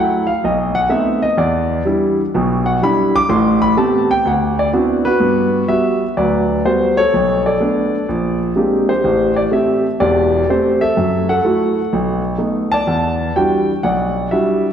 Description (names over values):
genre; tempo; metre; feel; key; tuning
solo jazz; 125 BPM; 4/4; swing 67% on 8ths; G major; A4 = 439 Hz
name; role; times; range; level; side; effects
warm concert grand piano; solo; 0.0-14.7 s; E1 to D6; -13 LUFS; equal; none
room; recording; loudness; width
wet concert hall reverb, RT60 1.9 s; recorded in a church or concert hall; -13 LUFS; side -8 dB against mid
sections
0.0-5.2 A section; 5.2-14.7 B section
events
grand piano solo 0.0-5.2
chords
0.4 B7b9; 1.4 Em7; 3.3 Am9; 4.3 D13; 5.2 Gmaj7; 7.1 Bm7; 8.1 Bb13; 9.0 Am7; 11.0 F#m7; 11.9 B7; 12.9 Em9